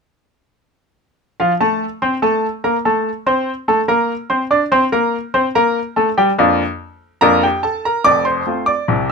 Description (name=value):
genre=ragtime piano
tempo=72 BPM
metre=2/4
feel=straight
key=F major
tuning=A4 = 440 Hz
part: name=bright baby grand piano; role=solo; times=1.4-9.1 s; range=F1 to D6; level=-14 LUFS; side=equal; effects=none
room=light reverb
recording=close, detailed microphones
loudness=-14 LUFS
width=side -4 dB against mid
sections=1.4-8.1 A section; 8.1-9.1 B section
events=none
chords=1.4 F (rootless); 4.7 Bb; 8.1 F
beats=| 1.39 2.22 | 3.06 3.88 | 4.71 5.54 | 6.38 7.22 | 8.06 8.89